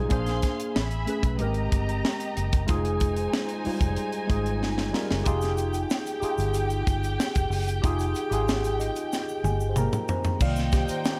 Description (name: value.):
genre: lush 1970s-style soul.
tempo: 93 BPM.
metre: 4/4.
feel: straight.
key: unclear.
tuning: A4 = 440 Hz.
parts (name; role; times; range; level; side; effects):
dark studio violin section; second line; 0.0-11.2 s; Eb4 to C6; -36 LUFS; equal; none.
mellow tine electric piano; accompaniment; 0.0-11.2 s; Eb3 to Bb5; -31 LUFS; equal; analog chorus.
vintage muted fingered electric bass; bass; 0.0-10.9 s; F1 to C2; -31 LUFS; equal; none.
tight funk drum kit; drums; 0.1-11.2 s; crash cymbal, hi-hat, kick drum, snare drum, toms; -30 LUFS; equal; none.
tube shaker; percussion; 5.3-11.2 s; none; -49 LUFS; equal; none.
room: light reverb, small room ambience.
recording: none.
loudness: -26 LUFS.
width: mono.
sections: 0.0-5.3 A section; 5.3-10.4 B section.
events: drum fill 4.6-5.3, 9.1-10.4; tine electric piano fill 8.5-10.4.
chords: 0.1 Bb9; 0.8 Amaj9; 1.4 Abmaj9; 2.7 Fm9; 10.4 Cm7.